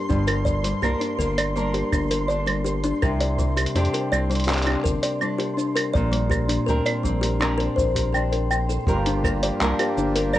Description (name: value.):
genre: folktronica.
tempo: 82 BPM.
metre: 4/4.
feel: straight.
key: G minor.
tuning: A4 = 440 Hz.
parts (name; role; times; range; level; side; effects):
kalimba; second line; 0.0-10.4 s; G3 to G5; -25 LUFS; left 3 dB; digital delay.
nylon-string guitar; arpeggios; 0.0-10.4 s; G2 to Bb4; -27 LUFS; right 1 dB; digital delay.
flickering grainy texture; texture; 0.0-8.9 s; C6; -35 LUFS; right 1 dB; built-in reverb.
round analog bass; bass; 0.1-10.4 s; G1 to F2; -26 LUFS; equal; none.
kick drum; drums; 0.1-9.4 s; none; -26 LUFS; equal; none.
lo-fi sampler-style drum kit; drums; 0.1-10.4 s; claves, handclaps, hi-hat, shaker; -27 LUFS; right 3 dB; overdrive.
pedal harmonium; sustained chords; 8.9-10.4 s; F3 to G4; -29 LUFS; right 1 dB; none.
room: light reverb.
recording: nothing above 10.3 kHz.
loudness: -20 LUFS.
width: side -14 dB against mid.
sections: 0.0-8.9 A section; 8.9-10.4 B section.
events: none.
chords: 0.0 Gm; 3.0 Csus2; 6.0 Bbadd9; 8.9 Gm7.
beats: | 0.10 0.83 1.56 2.29 | 3.02 3.76 4.49 5.22 | 5.95 6.68 7.42 8.15 | 8.88 9.61 10.34.